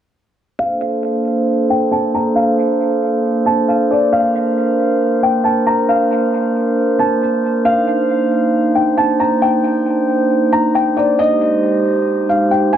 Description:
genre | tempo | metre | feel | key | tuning
hip hop | 136 BPM | 4/4 | half-time | Bb major | A4 = 436 Hz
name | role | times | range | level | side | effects
felt-muted upright piano | melody | 0.6-12.8 s | D5 to Bb5 | -17 LUFS | left 1 dB | low-pass filter, tape echo
glass harmonica | sustained chords | 0.6-12.8 s | Ab3 to C5 | -15 LUFS | right 1 dB | low-pass filter
room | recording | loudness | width
light reverb, small room ambience | echo-heavy mix | -13 LUFS | side -10 dB against mid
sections
0.6-12.8 A section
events
filter sweep 0.6-12.8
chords
0.6 Bbmaj9; 7.7 Cm9; 11.2 Abmaj7

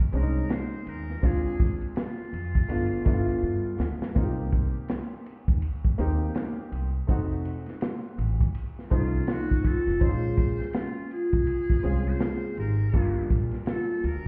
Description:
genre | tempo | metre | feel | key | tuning
hip hop, jazz-hop | 82 BPM | 4/4 | swing 61% on 16ths | F minor | A4 = 438 Hz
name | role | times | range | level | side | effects
clear upright piano | accompaniment | 0.1-14.1 s | F3 to C5 | -34 LUFS | equal | none
upright bass | bass | 0.1-14.3 s | F1 to G2 | -31 LUFS | equal | none
crunchy breakbeat drum kit | drums | 0.1-14.2 s | hi-hat, kick drum, ride cymbal, snare drum | -29 LUFS | equal | none
trumpet with metal mute | melody | 0.2-3.8, 8.9-14.3 s | F4 to C5 | -43 LUFS | equal | slapback echo
vibraphone with soft mallets | second line | 8.9-14.3 s | Db4 to Ab4 | -33 LUFS | equal | none
room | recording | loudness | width
small room ambience | heard muffled through a wall, stone room reverb, EQ | -27 LUFS | mono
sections
0.0-14.3 A section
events
drum fill 3.4-4.2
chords
0.0 Bbm9; 1.2 Dm7b5; 2.7 G7; 4.2 Cm7; 7.1 F7b9; 10.0 Bbm9; 12.9 Gm7

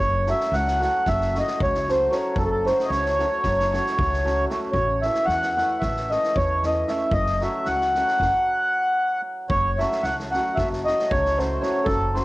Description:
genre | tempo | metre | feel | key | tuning
balkan folk, Balkan wedding band | 227 BPM (eighths) | 9/8 | straight | F# dorian sharp4 | A4 = 440 Hz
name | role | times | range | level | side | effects
mellow accordion | melody | 0.0-12.2 s | A4 to F#5 | -22 LUFS | equal | cassette tape
hammered dulcimer | accompaniment | 0.0-12.2 s | E3 to F#4 | -30 LUFS | equal | cassette tape
upright bass | bass | 0.0-12.2 s | F#1 to E2 | -28 LUFS | equal | none
street-band drum kit | percussion | 0.3-12.2 s | kick drum, snare drum | -31 LUFS | equal | cassette tape
room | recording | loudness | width
moderate spring reverb, RT60 2.7 s | home recording on cassette | -20 LUFS | side -19 dB against mid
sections
0.0-9.5 A section; 9.5-12.2 A section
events
none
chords
0.0 F#m; 4.7 A; 7.1 F#m

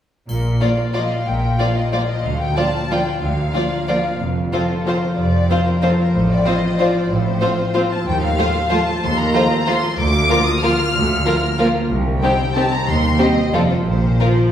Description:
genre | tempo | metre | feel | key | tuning
classical, orchestral ballroom waltz | 186 BPM | 3/4 | uneven beats, rubato | Bb major | A4 = 439 Hz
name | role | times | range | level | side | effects
concert harp | arpeggios | 0.3-14.5 s | A2 to F5 | -22 LUFS | left 2 dB | none
rich studio cello section | bass | 0.3-14.1 s | C2 to Bb2 | -24 LUFS | right 1 dB | none
rich studio double bass section | bass | 0.3-14.1 s | F1 to Eb2 | -22 LUFS | right 1 dB | none
triangle | percussion | 0.3-0.9 s | none | -41 LUFS | left 3 dB | none
warm studio violin section | melody | 0.6-14.5 s | A4 to F6 | -23 LUFS | left 2 dB | none
rich studio violin section | second line | 0.6-14.3 s | C4 to D5 | -22 LUFS | left 1 dB | none
rich studio viola section | accompaniment | 0.6-14.5 s | Eb3 to C4 | -23 LUFS | right 1 dB | none
room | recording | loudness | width
wet recital hall reverb, RT60 1.7 s | recorded in a church or concert hall | -15 LUFS | side -10 dB against mid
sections
0.3-14.5 A section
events
none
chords
0.3 Bb; 2.2 Bb/D; 4.2 F; 6.1 F/A; 8.1 F7/Eb; 10.0 Bb/D; 11.9 Cm; 12.9 Cm/Eb; 13.5 F5; 13.9 Bb5

